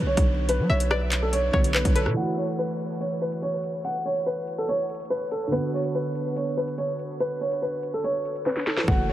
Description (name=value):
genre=hip hop, drill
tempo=143 BPM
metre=4/4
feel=half-time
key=unclear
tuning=A4 = 442 Hz
part: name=dark baby grand piano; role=melody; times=0.0-9.1 s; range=A4 to F#5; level=-27 LUFS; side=equal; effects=tape echo
part: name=felt-muted upright piano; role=accompaniment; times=0.0-9.1 s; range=D3 to F#4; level=-31 LUFS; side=right 2 dB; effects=analog chorus
part: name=hard-hitting 808-style bass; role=bass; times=0.0-2.2, 8.9-9.1 s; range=F#1 to F#3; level=-25 LUFS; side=equal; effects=none
part: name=drill drum kit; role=drums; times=0.2-9.0 s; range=handclaps, hi-hat, kick drum, rim click, snare drum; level=-25 LUFS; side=equal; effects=none
part: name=string-like resonator pluck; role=second line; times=0.7-2.2 s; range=B4 to E5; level=-34 LUFS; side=left 2 dB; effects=chorus, tape echo
room=moderate huge ambient reverb, RT60 9.1 s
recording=dreamy mix soaked in reverb, vinyl crackle, low-pass filter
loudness=-23 LUFS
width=side -13 dB against mid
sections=0.0-2.2 A section; 2.2-8.9 B section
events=filter sweep 2.2-8.9; drum fill 8.5-8.9; hi-hats muted 8.9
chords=0.0 Bm; 2.2 F#m7; 5.5 Bm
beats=0.07 | 0.49 0.91 1.33 1.75 | 2.17 2.58 3.00 3.42 | 3.84 4.26 4.68 5.10 | 5.52 5.94 6.36 6.78 | 7.20 7.62 8.04 8.46 | 8.88